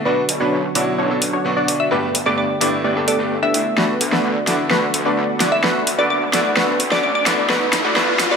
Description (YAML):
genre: EDM, festival progressive house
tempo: 129 BPM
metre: 4/4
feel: straight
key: D major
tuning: A4 = 440 Hz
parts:
  - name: glassy wavetable pluck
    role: melody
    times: 0.0-7.5 s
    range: D5 to E5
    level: -23 LUFS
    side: left 1 dB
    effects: chorus, cassette tape, ping-pong delay
  - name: bright concert grand piano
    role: accompaniment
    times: 0.0-8.4 s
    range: G2 to B4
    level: -23 LUFS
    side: right 1 dB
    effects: vintage 12-bit sampler grit, ping-pong delay
  - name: plucky unison lead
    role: arpeggios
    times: 0.0-8.4 s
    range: A4 to E5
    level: -25 LUFS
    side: left 1 dB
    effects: cassette tape, ping-pong delay
  - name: supersaw stab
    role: riff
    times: 0.0-8.4 s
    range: A3 to E5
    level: -21 LUFS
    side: equal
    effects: low-pass filter, ping-pong delay
  - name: lush unison pad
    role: sustained chords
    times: 0.1-8.4 s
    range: D3 to G4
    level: -29 LUFS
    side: equal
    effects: chorus
  - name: wide detuned saw bass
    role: bass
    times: 0.1-8.3 s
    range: G1 to D2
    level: -29 LUFS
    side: equal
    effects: none
  - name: big-room dance drum kit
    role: drums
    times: 0.3-8.3 s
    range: hi-hat, snare drum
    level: -20 LUFS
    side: equal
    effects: overdrive
  - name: riser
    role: sound effects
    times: 4.9-8.4 s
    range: none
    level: -25 LUFS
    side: left 1 dB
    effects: none
room: moderate lush hall reverb, RT60 2.5 s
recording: high-pass filter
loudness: -15 LUFS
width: side -6 dB against mid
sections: 0.0-8.4 A section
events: build-up 0.0-8.4; filter sweep on supersaw synth 0.0-8.4; drum fill 3.8-8.4; riser 4.9-8.4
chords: 0.1 Bm; 1.9 Gadd9; 3.8 D6; 7.5 Bm